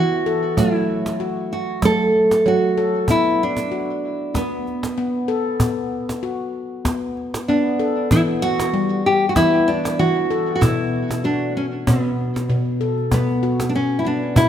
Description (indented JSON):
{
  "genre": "world meditative, meditative tuned percussion",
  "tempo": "96 BPM",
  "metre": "4/4",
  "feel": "swing 55% on 16ths",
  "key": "B minor",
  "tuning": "A4 = 438 Hz",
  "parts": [
    { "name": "nylon-string guitar", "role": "melody", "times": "0.0-14.5 s", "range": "B3 to A4", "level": "-20 LUFS", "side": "right 1 dB", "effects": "tape echo" },
    { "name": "handpan", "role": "arpeggios", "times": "0.0-14.5 s", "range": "B2 to A4", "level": "-21 LUFS", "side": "left 2 dB", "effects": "none" },
    { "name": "cajon", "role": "percussion", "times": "0.6-14.5 s", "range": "none", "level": "-22 LUFS", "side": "right 1 dB", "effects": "none" }
  ],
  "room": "wet recital hall reverb, RT60 1.7 s, studio reverb",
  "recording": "none",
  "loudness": "-17 LUFS",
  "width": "side -9 dB against mid",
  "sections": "0.0-13.1 A section; 13.1-14.5 B section",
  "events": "none",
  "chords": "0.0 N.C.; 0.6 F#m; 3.1 Bm; 8.1 Em; 10.6 B5"
}